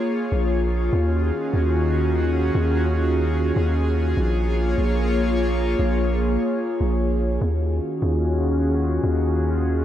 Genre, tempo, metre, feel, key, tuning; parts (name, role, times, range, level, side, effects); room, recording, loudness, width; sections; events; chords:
hip hop, atmospheric cloud-rap; 148 BPM; 4/4; half-time; Eb minor; A4 = 440 Hz
airy breathy pad; sustained chords; 0.0-9.8 s; Eb3 to Db5; -22 LUFS; equal; chorus, low-pass filter
long sustained 808-style bass; bass; 0.3-9.8 s; Bb1 to Eb2; -22 LUFS; equal
light reverb, digital ambience; -19 LUFS; side -11 dB against mid
0.0-7.4 A section; 7.4-9.8 B section
0.0 Bbm7; 0.9 Ebm11; 4.2 Bbm7; 7.4 Ebm11